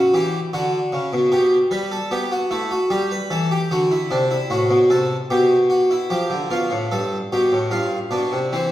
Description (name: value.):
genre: classical, baroque-style two-part invention for harpsichord.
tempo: 75 BPM.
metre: 3/4.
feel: straight.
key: G major.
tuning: A4 = 439 Hz.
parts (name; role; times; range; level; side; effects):
harpsichord; solo; 0.0-8.7 s; G2 to B4; -17 LUFS; equal; none.
room: wet recital hall reverb, RT60 1.7 s.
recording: heard from further back in the room.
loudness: -17 LUFS.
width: side -13 dB against mid.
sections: 0.0-6.1 A section; 6.1-8.7 B section.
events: none.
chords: 0.0 A7(no3) (rootless); 0.5 D; 1.3 G/B; 2.9 A5/G; 3.7 D7; 5.3 G/B; 6.1 Dm; 6.9 Gadd9; 7.7 G7.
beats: 0.53 | 1.31 2.11 2.90 | 3.70 4.50 5.30 | 6.11 6.92 7.72 | 8.54.